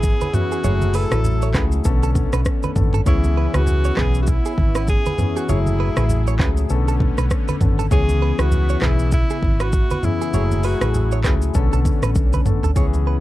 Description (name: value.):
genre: afrobeats.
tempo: 99 BPM.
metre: 4/4.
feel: swing 58% on 16ths.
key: F# minor.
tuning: A4 = 441 Hz.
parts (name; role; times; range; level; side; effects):
breathy tenor saxophone; melody; 0.0-11.2 s; E4 to A4; -26 LUFS; right 1 dB; tape echo.
warm analog pad; sustained chords; 0.0-13.2 s; A2 to G#4; -31 LUFS; right 2 dB; chorus, sidechain pumping.
hollow-body short-scale fingered electric bass; bass; 0.0-13.2 s; F#1 to C#2; -19 LUFS; equal; none.
afro-pop drum kit; drums; 0.0-13.1 s; handclaps, hi-hat, kick drum, rim click, shaker, toms; -20 LUFS; equal; overdrive.
direct-recorded clean electric guitar; riff; 0.2-13.2 s; G#4 to C#5; -30 LUFS; right 10 dB; tape echo.
congas; percussion; 0.2-13.1 s; none; -27 LUFS; right 1 dB; none.
warm grand piano; accompaniment; 0.3-13.2 s; D3 to A4; -25 LUFS; left 8 dB; none.
room: little or no reverb.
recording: dark, warm production.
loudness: -16 LUFS.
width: side -16 dB against mid.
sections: 0.0-12.8 A section.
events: drum fill 12.2-12.8.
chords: 0.0 C#m7; 0.6 F#m9; 1.9 Bm9; 3.1 C#m7; 5.5 F#m9; 6.7 Bm9; 7.9 C#m7; 10.3 F#m9; 11.5 Bm9.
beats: 0.03 | 0.64 1.25 1.85 2.46 | 3.06 3.67 4.28 4.88 | 5.49 6.09 6.70 7.31 | 7.91 8.52 9.12 9.73 | 10.34 10.94 11.55 12.15 | 12.76.